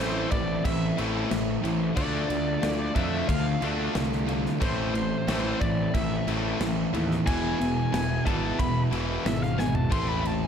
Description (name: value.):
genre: heavy metal.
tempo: 91 BPM.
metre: 4/4.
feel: straight.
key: unclear.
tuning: A4 = 440 Hz.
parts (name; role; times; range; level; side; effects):
high-gain lead guitar; melody; 0.0-10.5 s; C5 to C6; -33 LUFS; left 2 dB; distortion, ping-pong delay.
heavy high-gain guitar; riff; 0.0-10.5 s; E2 to D4; -32 LUFS; right 11 dB; distortion.
overdriven electric guitar; riff; 0.0-10.5 s; A2 to F4; -32 LUFS; equal; none.
tight distorted guitar; riff; 0.0-10.5 s; E2 to D4; -30 LUFS; left 8 dB; distortion.
fuzz picked electric bass; bass; 0.0-10.4 s; E1 to F2; -31 LUFS; equal; overdrive.
modern studio drum kit; drums; 0.3-10.4 s; crash cymbal, kick drum, snare drum, toms; -32 LUFS; right 1 dB; none.
room: light reverb.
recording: dark, warm production.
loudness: -24 LUFS.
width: side -8 dB against mid.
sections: 0.0-10.5 A section.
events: lead electric guitar solo 0.0-10.5; drum fill 9.6-9.9.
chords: 0.0 Am; 2.0 Dm; 4.6 Am; 7.3 E; 9.9 Am.